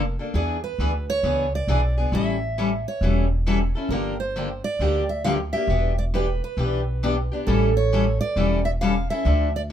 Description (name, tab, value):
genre	acoustic string swing (jazz manouche)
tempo	135 BPM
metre	4/4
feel	swing 65% on 8ths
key	unclear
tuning	A4 = 440 Hz
part	picked steel-string acoustic guitar	melody	0.0-9.6 s	G#4 to F5	-26 LUFS	right 3 dB	none
part	upright bass	bass	0.0-9.7 s	E1 to E2	-24 LUFS	equal	none
part	picked steel-string acoustic guitar	accompaniment	0.2-9.7 s	D3 to A4	-25 LUFS	left 3 dB	none
room	light reverb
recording	minimal, uncompressed stereo recording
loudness	-20 LUFS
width	side -10 dB against mid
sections	0.0-9.7 A section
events	none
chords	0.3 E7; 2.1 A7; 3.9 Gm7; 5.7 Em7; 7.5 A7